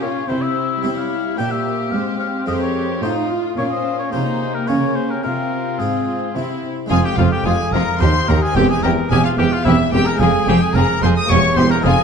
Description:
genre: classical, baroque-style concerto movement with solo episodes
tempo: 109 BPM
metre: 3/4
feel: straight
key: F minor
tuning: A4 = 440 Hz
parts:
  - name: rich chamber violin section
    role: melody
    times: 0.0-12.0 s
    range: F4 to Eb6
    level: -24 LUFS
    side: left 3 dB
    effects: none
  - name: warm oboe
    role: melody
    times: 0.0-12.0 s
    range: E4 to G5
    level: -24 LUFS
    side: left 3 dB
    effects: none
  - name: rich chamber violin section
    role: second line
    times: 0.0-11.9 s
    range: Db4 to Ab4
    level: -24 LUFS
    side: left 3 dB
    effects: none
  - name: harpsichord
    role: accompaniment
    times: 0.0-12.0 s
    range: Eb2 to G4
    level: -24 LUFS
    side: equal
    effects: none
  - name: rich studio viola section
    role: accompaniment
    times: 0.0-11.9 s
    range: G3 to F4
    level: -24 LUFS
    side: equal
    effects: none
  - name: rich studio cello section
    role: bass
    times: 0.0-11.9 s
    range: Eb2 to C4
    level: -21 LUFS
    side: right 3 dB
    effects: none
  - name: clear studio double bass section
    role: bass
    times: 6.9-11.9 s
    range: E1 to Eb2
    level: -20 LUFS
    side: right 3 dB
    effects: none
room: wet recital hall reverb, RT60 1.6 s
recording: dark, warm production, nothing above 10.7 kHz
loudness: -15 LUFS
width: side -6 dB against mid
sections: 0.0-6.9 A section; 6.9-12.0 B section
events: none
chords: 0.3 C; 1.4 C7/Bb; 1.9 Fm/Ab; 3.0 F7/A; 3.6 Bbm; 5.2 Fm/C; 6.3 C; 6.9 Fm; 8.0 Eb; 8.6 C/E; 10.2 Fm; 11.3 C7/E

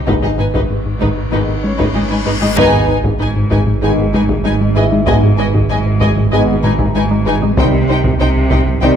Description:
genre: cinematic, hybrid orchestral and electronic film score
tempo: 96 BPM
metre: 4/4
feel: straight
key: unclear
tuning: A4 = 440 Hz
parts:
  - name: rubbery square bass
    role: riff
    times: 0.0-8.9 s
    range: C2 to G#3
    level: -18 LUFS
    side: left 2 dB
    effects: none
  - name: warm sub bass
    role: bass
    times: 0.0-9.0 s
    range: G#1 to C2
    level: -23 LUFS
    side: equal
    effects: none
  - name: rich symphonic violin section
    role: melody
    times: 0.1-8.9 s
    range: B4 to G#5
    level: -24 LUFS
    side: left 4 dB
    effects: none
  - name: warm symphonic violin section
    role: second line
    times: 0.1-8.9 s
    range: D#4 to C5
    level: -23 LUFS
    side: left 2 dB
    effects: none
  - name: rich symphonic viola section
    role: accompaniment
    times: 0.1-8.9 s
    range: D#4 to D#5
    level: -22 LUFS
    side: right 2 dB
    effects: none
  - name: dark trombone section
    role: sustained chords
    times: 0.1-9.0 s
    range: B2 to G#3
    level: -23 LUFS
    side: right 4 dB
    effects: none
  - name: mellow French horn section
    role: sustained chords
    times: 0.1-9.0 s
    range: B3 to D#4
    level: -22 LUFS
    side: left 4 dB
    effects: none
  - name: resonant blip pluck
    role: arpeggios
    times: 0.1-8.9 s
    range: C3 to G#4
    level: -24 LUFS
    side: right 2 dB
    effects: phaser, digital delay
  - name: rich symphonic cello section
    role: bass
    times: 0.1-9.0 s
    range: G#2 to C3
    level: -20 LUFS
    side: right 2 dB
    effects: none
  - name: warm symphonic double bass section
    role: bass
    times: 0.1-9.0 s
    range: G#1 to C2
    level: -21 LUFS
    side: right 4 dB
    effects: none
  - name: taiko ensemble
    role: drums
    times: 0.1-9.0 s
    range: none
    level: -20 LUFS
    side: equal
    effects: none
  - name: reverse cymbal and sub drop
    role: sound effects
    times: 0.7-5.1 s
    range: none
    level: -27 LUFS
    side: left 2 dB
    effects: none
  - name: felt-muted upright piano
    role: texture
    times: 0.4-9.0 s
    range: C#4 to A#5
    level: -26 LUFS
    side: left 1 dB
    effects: digital delay
room: wet recital hall reverb, RT60 1.3 s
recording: none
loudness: -11 LUFS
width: side -8 dB against mid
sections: 0.0-2.6 A section; 2.6-9.0 A section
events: reverse cymbal 0.7-2.6; band accent 2.6-3.2; impact 2.6-5.1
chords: 0.1 G#m; 7.6 Cm

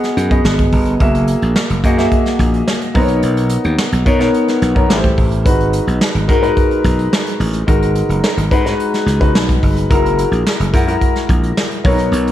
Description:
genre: polished 1980s jazz-funk pop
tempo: 108 BPM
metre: 4/4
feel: straight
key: G# minor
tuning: A4 = 440 Hz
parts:
  - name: clear concert grand piano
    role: accompaniment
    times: 0.0-12.3 s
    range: G#3 to F#5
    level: -16 LUFS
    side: left 1 dB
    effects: lush chorus
  - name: vintage brush drum kit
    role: drums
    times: 0.0-12.3 s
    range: hi-hat, kick drum, snare drum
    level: -16 LUFS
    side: equal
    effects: gated reverb
  - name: slap bass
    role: bass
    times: 0.2-12.3 s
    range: F#1 to B2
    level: -17 LUFS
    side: equal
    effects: none
room: light reverb, small room reverb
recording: none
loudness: -12 LUFS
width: side -12 dB against mid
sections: 0.0-12.3 A section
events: none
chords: 0.0 G#m7; 1.0 F#9; 3.0 Bmaj9; 4.9 Am7; 5.5 G#m7; 9.9 F#9

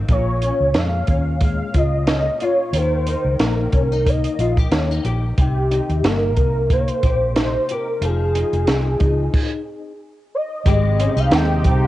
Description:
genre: indie pop, bedroom pop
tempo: 91 BPM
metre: 4/4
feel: swing 55% on 16ths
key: Bb dorian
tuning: A4 = 438 Hz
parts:
  - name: nylon-string guitar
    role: accompaniment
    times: 0.0-11.9 s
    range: Bb2 to G4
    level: -26 LUFS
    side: left 6 dB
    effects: ensemble chorus, warbly pitch drift, cassette tape
  - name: vintage muted fingered electric bass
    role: bass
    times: 0.0-11.9 s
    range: F1 to F2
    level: -20 LUFS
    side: equal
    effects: transformer saturation
  - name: warm velvety synth lead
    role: melody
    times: 0.1-11.9 s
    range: G4 to G5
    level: -22 LUFS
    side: equal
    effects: ensemble chorus, cassette tape, tape echo
  - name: compact cocktail drum kit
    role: drums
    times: 0.1-11.8 s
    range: crash cymbal, hi-hat, kick drum, snare drum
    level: -19 LUFS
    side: right 1 dB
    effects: cassette tape
  - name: phased analog pad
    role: sustained chords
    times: 10.8-11.9 s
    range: C3 to G4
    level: -24 LUFS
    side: right 1 dB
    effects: phaser, chorus, cassette tape
room: light reverb, small room ambience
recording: home recording on cassette, nothing above 10.7 kHz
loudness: -16 LUFS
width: side -15 dB against mid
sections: 0.0-10.7 A section; 10.7-11.9 B section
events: stop 9.3-10.7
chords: 0.1 Bbm7; 2.7 Eb; 5.4 Cm7; 8.0 Fm7; 10.7 Abmaj7

